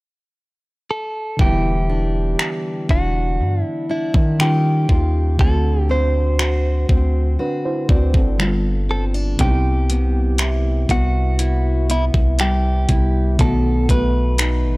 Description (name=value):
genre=contemporary R&B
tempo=60 BPM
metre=4/4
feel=straight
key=E minor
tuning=A4 = 436 Hz
part: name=direct-recorded clean electric guitar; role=melody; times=0.9-14.8 s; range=E4 to C5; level=-24 LUFS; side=right 1 dB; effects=phaser, analog delay
part: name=mellow FM electric piano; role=accompaniment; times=1.4-14.8 s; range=C3 to D5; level=-26 LUFS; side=right 1 dB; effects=chorus
part: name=fingerpicked steel-string acoustic guitar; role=arpeggios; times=1.4-14.8 s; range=G2 to F#4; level=-24 LUFS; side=left 1 dB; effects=none
part: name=long sustained 808-style bass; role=bass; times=1.4-14.8 s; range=E1 to D#3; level=-18 LUFS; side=equal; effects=none
part: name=gated 80s digital drum machine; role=drums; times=1.4-14.6 s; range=finger snaps, hi-hat, kick drum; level=-18 LUFS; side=equal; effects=overdrive
room=little or no reverb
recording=dry, gritty hardware recording, transformer saturation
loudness=-16 LUFS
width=side -22 dB against mid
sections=0.0-1.4 A section; 1.4-14.8 B section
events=none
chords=0.0 N.C.; 1.4 Em7; 4.4 D#9; 5.4 D7; 8.4 G7; 9.4 Cmaj7; 13.4 B7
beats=0.39 | 1.39 2.39 3.39 4.39 | 5.39 6.39 7.39 8.39 | 9.39 10.39 11.39 12.39 | 13.39 14.39